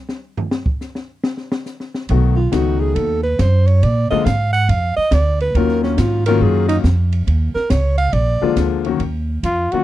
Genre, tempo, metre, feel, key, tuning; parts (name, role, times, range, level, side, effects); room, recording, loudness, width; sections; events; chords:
jazz, small-group swing and bop; 139 BPM; 4/4; swing 65% on 8ths; Eb minor; A4 = 440 Hz
open jazz drum kit; drums; 0.1-9.8 s; hi-hat, kick drum, ride cymbal, snare drum, toms; -24 LUFS; left 1 dB
warm baby grand piano; accompaniment; 2.1-9.8 s; D3 to F#4; -19 LUFS; left 10 dB
upright bass; bass; 2.1-9.8 s; Bb1 to Bb2; -16 LUFS; right 1 dB
breathy alto saxophone; second line; 2.4-8.6 s; Db4 to Gb5; -20 LUFS; right 3 dB
dark trumpet; melody; 9.4-9.8 s; F4 to Gb4; -18 LUFS; left 1 dB
little or no reverb; dry, close 1970s-style studio recording; -15 LUFS; side -14 dB against mid
0.0-9.0 A section
alto saxophone solo 0.0-9.0; drum solo 0.0-2.1
0.0 N.C.; 2.1 B7; 3.8 Bb7; 5.5 Ebm9; 8.1 Bb7; 9.0 Ebmadd9